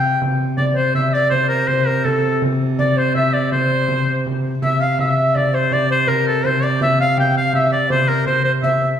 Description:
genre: medieval dance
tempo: 164 BPM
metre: 3/4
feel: straight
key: C mixolydian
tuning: A4 = 439 Hz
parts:
  - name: bright shawm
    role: melody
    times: 0.0-8.9 s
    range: A4 to G5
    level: -19 LUFS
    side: equal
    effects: none
  - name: breathy tenor recorder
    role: second line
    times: 0.0-8.9 s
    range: A4 to G5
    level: -22 LUFS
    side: left 1 dB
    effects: none
  - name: clear viola da gamba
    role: drone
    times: 0.0-9.0 s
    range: C3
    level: -24 LUFS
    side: right 1 dB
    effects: none
  - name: frame drum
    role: percussion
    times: 0.0-8.8 s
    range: none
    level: -21 LUFS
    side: equal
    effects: none
room: wet recital hall reverb, RT60 1.6 s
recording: heard from further back in the room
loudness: -15 LUFS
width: side -9 dB against mid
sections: 0.0-4.6 A section; 4.6-9.0 B section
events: none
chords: none

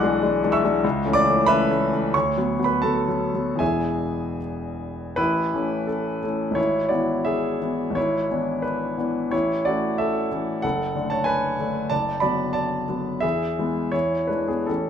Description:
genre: classical, romantic character piece for solo piano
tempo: 74-100 BPM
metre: 2/4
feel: rubato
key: A major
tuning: A4 = 440 Hz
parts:
  - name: warm concert grand piano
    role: solo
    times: 0.0-14.9 s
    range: E1 to F#6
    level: -21 LUFS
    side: equal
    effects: none
room: moderate large studio reverb, RT60 0.9 s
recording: minimal, uncompressed stereo recording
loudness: -21 LUFS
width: side -8 dB against mid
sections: 0.0-5.2 A section; 5.2-14.9 B section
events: none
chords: 0.0 E7/B; 0.8 A/C#; 2.1 Bm/D; 3.6 E; 5.2 A; 6.6 E/G#; 8.0 E7/G#; 9.3 A; 10.6 D/F#; 11.9 Bm7/F#; 13.2 E; 13.9 E7

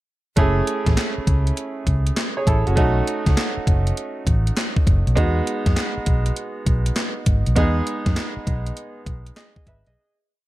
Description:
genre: R&B, new jack swing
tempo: 100 BPM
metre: 4/4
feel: swing 66% on 16ths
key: unclear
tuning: A4 = 435 Hz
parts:
  - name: bright concert grand piano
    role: accompaniment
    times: 0.4-10.2 s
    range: G#3 to E5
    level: -25 LUFS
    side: right 2 dB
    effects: none
  - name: vintage muted fingered electric bass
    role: bass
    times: 0.4-9.9 s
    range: F#1 to F#2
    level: -20 LUFS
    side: equal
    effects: none
  - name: gated 80s digital drum machine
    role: drums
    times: 0.4-10.0 s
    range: handclaps, hi-hat, kick drum, snare drum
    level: -21 LUFS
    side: equal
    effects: gated reverb, gated reverb snare
room: little or no reverb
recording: dark, warm production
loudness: -18 LUFS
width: side -16 dB against mid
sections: 0.4-10.0 verse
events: fade-out 7.6-10.0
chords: 0.4 F#m7; 2.8 B7; 5.2 Emaj7

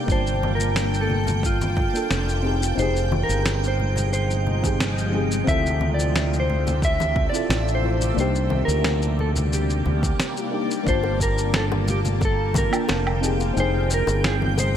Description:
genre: sunset chillout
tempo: 89 BPM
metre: 4/4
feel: straight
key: G minor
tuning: A4 = 440 Hz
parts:
  - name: mellow FM electric piano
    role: accompaniment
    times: 0.0-14.8 s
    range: Bb3 to A5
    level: -28 LUFS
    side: moving between left 6 dB and right 6 dB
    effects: chorus, auto-pan, low-pass filter, digital delay
  - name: shimmering ambient pad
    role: sustained chords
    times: 0.0-14.8 s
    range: C3 to A5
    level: -29 LUFS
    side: equal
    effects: chorus, built-in reverb, phaser
  - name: drifting glass-harmonics texture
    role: texture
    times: 0.0-10.9 s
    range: G5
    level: -35 LUFS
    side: right 8 dB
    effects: chorus, built-in reverb
  - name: mellow electric guitar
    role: melody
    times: 0.1-14.8 s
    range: F4 to E5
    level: -27 LUFS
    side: equal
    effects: lush chorus, digital delay
  - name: fretless electric bass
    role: bass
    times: 0.1-14.8 s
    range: F1 to D2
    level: -24 LUFS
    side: equal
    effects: none
  - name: electronic cabasa, snare drum and woodblock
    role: drums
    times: 0.1-14.7 s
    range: none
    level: -27 LUFS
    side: equal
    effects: none
  - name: electronic kick drum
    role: drums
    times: 0.1-12.7 s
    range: none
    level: -24 LUFS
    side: equal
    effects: overdrive
  - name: congas and bongos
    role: percussion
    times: 0.4-14.7 s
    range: none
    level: -30 LUFS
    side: left 3 dB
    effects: none
room: light reverb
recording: bright 1980s-style digital production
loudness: -20 LUFS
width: side -9 dB against mid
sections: 0.0-10.9 A section; 10.9-14.8 B section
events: none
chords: 0.1 Gm9; 2.4 Fm9; 5.5 Dm9; 8.2 Cm9; 10.9 Gm9; 13.2 Fm9

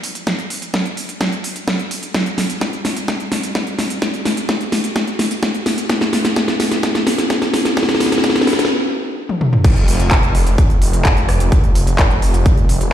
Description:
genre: EDM, festival progressive house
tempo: 128 BPM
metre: 4/4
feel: straight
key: unclear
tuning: A4 = 442 Hz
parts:
  - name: big-room dance drum kit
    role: drums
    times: 0.0-12.9 s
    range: crash cymbal, handclaps, hi-hat, rim click, snare drum, toms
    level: -17 LUFS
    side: equal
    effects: none
  - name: electronic kick drum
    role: drums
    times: 0.3-12.6 s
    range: none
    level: -15 LUFS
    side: equal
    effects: high-pass filter on kick
  - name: wide detuned saw bass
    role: bass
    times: 9.6-12.9 s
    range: F1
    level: -16 LUFS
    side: equal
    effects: chorus, sidechain pumping
room: wet lush hall reverb, RT60 2.0 s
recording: played on a big sound system in a bare room, stone room reverb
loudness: -14 LUFS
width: side -11 dB against mid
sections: 0.0-9.6 A section; 9.6-12.9 B section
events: build-up 0.0-9.6; drum fill 0.0-8.7, 9.3-9.6; stop 8.7-9.6; drop 9.6-12.9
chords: none

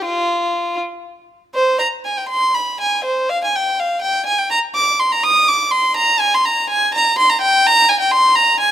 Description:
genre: classical, baroque-style suite movement for unaccompanied violin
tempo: 82 BPM (dotted quarters)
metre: 6/8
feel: rubato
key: C minor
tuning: A4 = 437 Hz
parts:
  - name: rich violin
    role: solo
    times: 0.0-8.7 s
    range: F4 to Eb6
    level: -13 LUFS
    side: equal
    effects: none
room: light reverb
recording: close, detailed microphones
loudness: -13 LUFS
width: side -11 dB against mid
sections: 0.0-1.5 A section; 1.5-8.7 A section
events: none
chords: none

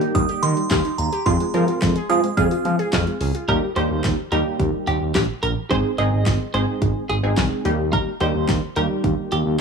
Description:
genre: synth-pop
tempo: 108 BPM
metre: 4/4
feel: straight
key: Eb major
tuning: A4 = 437 Hz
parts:
  - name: glassy synth bell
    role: melody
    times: 0.0-3.2 s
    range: Bb5 to G6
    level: -26 LUFS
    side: right 5 dB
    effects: chorus, analog delay
  - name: funky polysynth comp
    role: accompaniment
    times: 0.0-9.6 s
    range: G3 to Bb4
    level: -24 LUFS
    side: equal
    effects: chorus
  - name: warbly dusty pluck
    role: arpeggios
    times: 0.0-3.4 s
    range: G3 to Ab4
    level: -26 LUFS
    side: left 1 dB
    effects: chorus, phaser, analog delay
  - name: pop drum kit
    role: drums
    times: 0.0-9.4 s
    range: handclaps, hi-hat, kick drum, snare drum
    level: -24 LUFS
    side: equal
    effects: none
  - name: smooth synth bass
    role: bass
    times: 0.1-9.6 s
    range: Ab1 to F3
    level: -22 LUFS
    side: right 1 dB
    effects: none
  - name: twelve-string electric guitar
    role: second line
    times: 3.5-9.5 s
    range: G4 to Eb5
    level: -26 LUFS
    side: right 2 dB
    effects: tremolo, analog delay
room: digital ambience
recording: dry, gritty hardware recording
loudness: -18 LUFS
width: side -5 dB against mid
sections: 0.0-3.5 A section; 3.5-9.6 B section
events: none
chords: 0.0 Eb; 1.3 Fm; 3.5 Eb; 5.7 Ab; 7.7 Eb

